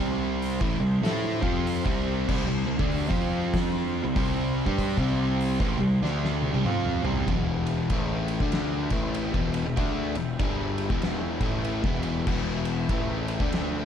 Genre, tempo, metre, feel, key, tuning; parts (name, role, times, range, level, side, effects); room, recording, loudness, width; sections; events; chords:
stoner and doom metal; 96 BPM; 4/4; swing 62% on 8ths; E phrygian; A4 = 440 Hz
soft string machine; sustained chords; 0.0-13.8 s; F4 to C6; -40 LUFS; equal
biting overdriven guitar; riff; 0.0-13.8 s; E2 to A4; -31 LUFS; right 1 dB
thick fuzz guitar; riff; 0.0-13.8 s; E2 to A4; -30 LUFS; left 9 dB; distortion
thick fuzz guitar; riff; 0.0-7.3 s; A2 to A4; -29 LUFS; right 9 dB; distortion
fuzz picked electric bass; bass; 0.0-13.8 s; E1 to A2; -32 LUFS; equal; overdrive
oversized low-tuned drum kit; drums; 0.4-13.7 s; crash cymbal, hi-hat, kick drum, ride cymbal, snare drum, toms; -30 LUFS; equal
little or no reverb; dark, warm production; -24 LUFS; side -8 dB against mid
0.0-7.3 A section; 7.3-13.8 B section
drum fill 6.0-7.3
0.0 C5; 3.1 F5; 4.0 C5; 7.3 Em